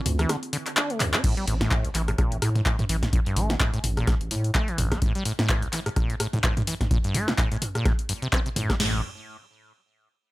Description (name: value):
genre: acid house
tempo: 127 BPM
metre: 4/4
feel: swing 57% on 16ths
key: unclear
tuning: A4 = 435 Hz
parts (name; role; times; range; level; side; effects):
- warbly tape-like pad; sustained chords; 0.0-1.2 s; D3 to F4; -39 LUFS; right 5 dB; chorus, built-in reverb, phaser, sidechain pumping
- saturated sub bass; bass; 0.1-5.0, 8.8-9.0 s; A1 to A2; -26 LUFS; equal; tube saturation, sidechain pumping
- punchy analog drum machine; drums; 0.1-8.8 s; crash cymbal, handclaps, hi-hat, rim click, snare drum, toms; -27 LUFS; equal; overdrive
- acid bass, saw; riff; 0.2-9.0 s; A1 to D4; -28 LUFS; equal; cassette tape, sidechain pumping, digital delay
- booming analog drum machine; drums; 1.2-8.9 s; crash cymbal, kick drum, snare drum, toms; -25 LUFS; equal; none
room: little or no reverb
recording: none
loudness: -22 LUFS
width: side -18 dB against mid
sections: 0.0-1.2 A section; 1.2-8.8 B section; 8.8-10.3 C section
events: drop 0.0-1.2; drum fill 1.0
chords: 0.0 Dm7; 1.2 N.C.